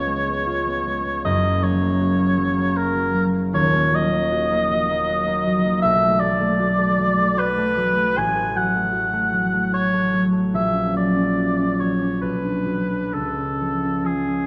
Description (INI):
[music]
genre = classical, romantic duo for oboe and harp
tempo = 64-81 BPM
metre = 3/4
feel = rubato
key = F# minor from 5.8 s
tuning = A4 = 440 Hz
[part]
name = warm oboe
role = melody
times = 0.0-14.5 s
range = G#4 to G#5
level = -24 LUFS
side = equal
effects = none
[part]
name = concert harp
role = accompaniment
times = 0.0-14.5 s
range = D#1 to F#4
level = -23 LUFS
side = equal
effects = none
[sound]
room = wet concert hall reverb, RT60 2.4 s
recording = dark, warm production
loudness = -21 LUFS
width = mono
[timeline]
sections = 0.0-14.5 A section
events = none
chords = 0.0 C#7; 1.2 F#; 3.5 D#m; 5.8 Bm7; 8.2 F#m/A; 10.5 F#/A#; 12.2 Bm; 13.1 C#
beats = 0.45 | 1.24 2.01 2.77 | 3.54 4.33 5.09 | 5.83 6.60 7.39 | 8.18 8.96 9.74 | 10.55 11.38 12.23 | 13.13 14.05